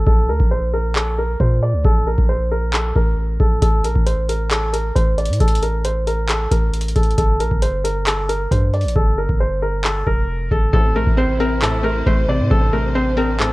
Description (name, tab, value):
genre	hip hop, trap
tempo	135 BPM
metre	4/4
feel	half-time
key	unclear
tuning	A4 = 436 Hz
part	felt-muted upright piano	melody	0.0-13.5 s	A4 to D5	-21 LUFS	equal	low-pass filter
part	long sustained 808-style bass	bass	0.0-13.5 s	F1 to Bb2	-20 LUFS	equal	none
part	booming analog drum machine	drums	0.1-13.5 s	handclaps, hi-hat, kick drum	-18 LUFS	equal	none
part	hollow square pluck	accompaniment	10.7-13.5 s	A2 to C4	-22 LUFS	left 2 dB	chorus, low-pass filter
part	warm symphonic string section	sustained chords	10.7-13.5 s	C3 to C5	-26 LUFS	equal	none
room	little or no reverb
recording	worn, warbling old tape, cassette tape, warbly pitch drift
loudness	-15 LUFS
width	side -20 dB against mid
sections	0.0-13.5 A section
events	break 0.0-3.6; filter sweep 0.0-10.7; hi-hats muted 9.0-10.7, 10.7-13.5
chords	0.1 N.C.; 7.2 Gm; 10.7 Am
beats	| 0.07 0.51 0.96 1.40 | 1.85 2.29 2.73 3.18 | 3.62 4.07 4.51 4.96 | 5.40 5.85 6.29 6.74 | 7.18 7.62 8.07 8.51 | 8.96 9.40 9.85 10.29 | 10.73 11.18 11.62 12.07 | 12.51 12.96 13.40